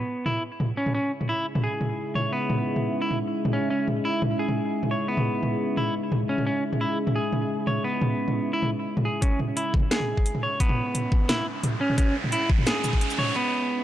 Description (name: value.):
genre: half-time drum and bass.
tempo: 174 BPM.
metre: 4/4.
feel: half-time.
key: C# minor.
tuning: A4 = 441 Hz.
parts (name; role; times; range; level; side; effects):
deep dark ambient pad; sustained chords; 1.2-13.4 s; C#4 to E5; -30 LUFS; left 1 dB; chorus, built-in reverb, sidechain pumping.
semi-hollow electric guitar; arpeggios; 0.0-13.8 s; B3 to C#5; -28 LUFS; right 1 dB; low-pass filter, analog delay.
drum and bass drum kit; drums; 0.3-13.3 s; hi-hat, shaker, snare drum, toms; -28 LUFS; equal; low-pass filter on toms, low-pass filter on snare, low-pass filter on hats, low-pass filter on perc, low-pass filter on room.
electronic kick drum; drums; 9.2-13.0 s; none; -22 LUFS; equal; none.
riser; sound effects; 10.6-13.4 s; none; -33 LUFS; right 2 dB; none.
room: digital ambience.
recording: dry, gritty hardware recording, transformer saturation, cassette tape.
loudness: -23 LUFS.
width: side -12 dB against mid.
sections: 0.0-9.2 A section; 9.2-13.8 B section.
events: build-up 9.2-13.8; riser 10.6-13.4.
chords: 0.0 C#m.